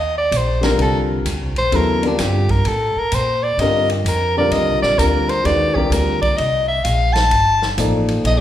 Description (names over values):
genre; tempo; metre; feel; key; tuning
modal jazz; 129 BPM; 4/4; swing 66% on 8ths; C dorian; A4 = 440 Hz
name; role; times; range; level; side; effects
clear soprano saxophone; melody; 0.0-8.4 s; D4 to A5; -18 LUFS; equal; none
upright bass; bass; 0.0-8.4 s; G1 to Bb2; -20 LUFS; right 1 dB; none
vintage drum kit; drums; 0.3-8.4 s; hi-hat, kick drum, ride cymbal, snare drum; -27 LUFS; equal; none
warm baby grand piano; accompaniment; 0.6-8.4 s; Db3 to D5; -20 LUFS; left 2 dB; none
room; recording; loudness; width
wet recital hall reverb, RT60 1.4 s; recorded in a church or concert hall; -15 LUFS; side -11 dB against mid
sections
0.0-8.4 A section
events
soprano saxophone solo 0.0-8.4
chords
0.0 Cm11